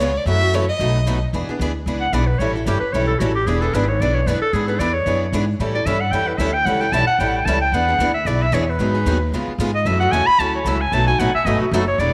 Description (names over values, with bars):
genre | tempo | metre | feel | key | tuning
acoustic string swing (jazz manouche) | 225 BPM | 4/4 | swing 56% on 8ths | E mixolydian | A4 = 440 Hz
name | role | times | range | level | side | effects
warm violin | melody | 0.0-1.2 s | C#5 to E5 | -24 LUFS | equal | slapback echo
picked steel-string acoustic guitar | accompaniment | 0.0-12.1 s | B2 to A4 | -27 LUFS | equal | none
picked steel-string acoustic guitar | accompaniment | 0.0-12.1 s | B2 to B4 | -29 LUFS | equal | none
upright bass | bass | 0.0-12.1 s | E1 to A2 | -24 LUFS | equal | none
bright clarinet | second line | 2.0-12.1 s | E4 to B5 | -22 LUFS | equal | none
room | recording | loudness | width
moderate echo chamber reverb, RT60 2.0 s | none | -19 LUFS | mono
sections
0.0-1.3 A section; 1.3-12.1 B section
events
clarinet solo 1.3-12.1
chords
0.3 F#m7; 0.8 B7; 1.3 E7; 2.4 A7; 3.5 E7; 5.6 A7; 7.7 E7; 8.8 G#m7; 9.3 C#7; 9.9 F#m7; 10.9 B7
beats
0.00 | 0.27 0.54 0.80 1.07 | 1.34 1.60 1.87 2.14 | 2.40 2.67 2.94 3.20 | 3.47 3.74 4.00 4.27 | 4.54 4.80 5.07 5.33 | 5.60 5.87 6.13 6.40 | 6.67 6.93 7.20 7.47 | 7.73 8.00 8.26 8.53 | 8.80 9.06 9.33 9.59 | 9.86 10.13 10.39 10.66 | 10.92 11.19 11.46 11.72 | 11.99